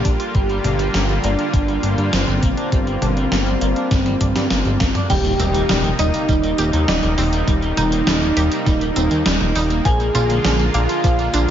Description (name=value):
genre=synthwave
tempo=101 BPM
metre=4/4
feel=straight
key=unclear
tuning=A4 = 440 Hz
part: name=warm velvety synth lead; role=melody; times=0.0-11.5 s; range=C4 to Ab4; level=-22 LUFS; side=right 1 dB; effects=chorus, cassette tape, digital delay
part: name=lush unison pad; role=sustained chords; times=0.0-11.5 s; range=C3 to F4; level=-24 LUFS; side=equal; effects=chorus, sidechain pumping
part: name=electric guitar at the edge of break-up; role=riff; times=0.0-11.4 s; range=Eb3 to F4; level=-29 LUFS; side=equal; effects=lush chorus, digital delay
part: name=fat analog bass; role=bass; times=0.0-11.5 s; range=Eb1 to G2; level=-20 LUFS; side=equal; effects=none
part: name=electronic kick drum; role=drums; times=0.1-11.2 s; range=none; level=-19 LUFS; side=equal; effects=overdrive, small room ambience
part: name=gated 80s digital drum machine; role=drums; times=0.1-11.5 s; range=crash cymbal, hi-hat, snare drum, tambourine, toms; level=-23 LUFS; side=equal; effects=gated reverb, gated reverb snare, overdrive, small room ambience
part: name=soft synth bell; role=second line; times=5.1-11.5 s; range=Eb5 to Ab5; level=-28 LUFS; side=equal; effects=chorus, digital delay
part: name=analog pluck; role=arpeggios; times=5.1-11.5 s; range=F3 to G4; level=-27 LUFS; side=right 3 dB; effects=chorus, digital delay
part: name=impact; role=sound effects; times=5.1-7.5 s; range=none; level=-28 LUFS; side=equal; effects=none
room=light reverb, digital ambience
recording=nothing above 7.5 kHz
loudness=-15 LUFS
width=side -10 dB against mid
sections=0.0-5.1 A section; 5.1-11.5 B section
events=drum fill 3.9-5.1; impact 5.1-7.5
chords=0.3 Gm7; 5.1 Eb6; 9.9 Bb7